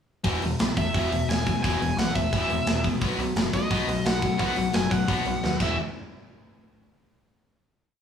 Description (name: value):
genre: punk rock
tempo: 174 BPM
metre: 4/4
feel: straight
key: E major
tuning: A4 = 441 Hz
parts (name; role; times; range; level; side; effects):
- cranked stack guitar; riff; 0.2-5.7 s; E2 to B3; -30 LUFS; right 4 dB; overdrive
- sludgy distorted guitar; riff; 0.2-5.7 s; E2 to B3; -29 LUFS; left 6 dB; overdrive
- growling picked electric bass; bass; 0.2-5.8 s; E1 to D#2; -31 LUFS; equal; overdrive
- tight metal drum kit; drums; 0.2-5.7 s; crash cymbal, hi-hat, kick drum, snare drum; -28 LUFS; equal; none
- high-gain lead guitar; melody; 0.8-5.8 s; D#5 to G#5; -29 LUFS; equal; distortion
room: moderate large studio reverb, RT60 0.9 s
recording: band playing live in one room, studio ambience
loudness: -22 LUFS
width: side -8 dB against mid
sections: 0.2-5.8 verse; 5.8-7.2 final hit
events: drum fill 5.4-5.8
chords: 0.2 E; 3.0 B; 5.6 E5; 5.8 N.C.